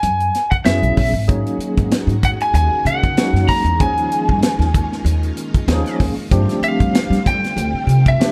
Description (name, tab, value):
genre	electric jazz fusion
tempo	96 BPM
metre	4/4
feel	swing 55% on 16ths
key	unclear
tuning	A4 = 443 Hz
part	lightly driven lead guitar	melody	0.0-8.3 s	E5 to A#5	-22 LUFS	equal	slapback echo
part	upright bass	bass	0.0-8.1 s	G#1 to G3	-20 LUFS	equal	none
part	tight funk drum kit	drums	0.0-8.3 s	hi-hat, kick drum, snare drum	-21 LUFS	equal	none
part	barky tine electric piano	accompaniment	0.7-8.3 s	E#3 to G#4	-24 LUFS	equal	overdrive, fast tremolo, analog chorus
part	string machine, full ensemble	sustained chords	1.3-8.3 s	D3 to F#4	-30 LUFS	equal	ensemble chorus
room	small room ambience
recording	dark, warm production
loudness	-17 LUFS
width	mono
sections	0.0-8.3 A section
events	none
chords	0.0 F#9sus4; 1.3 G#9sus4; 3.8 D#9sus4; 6.3 G9sus4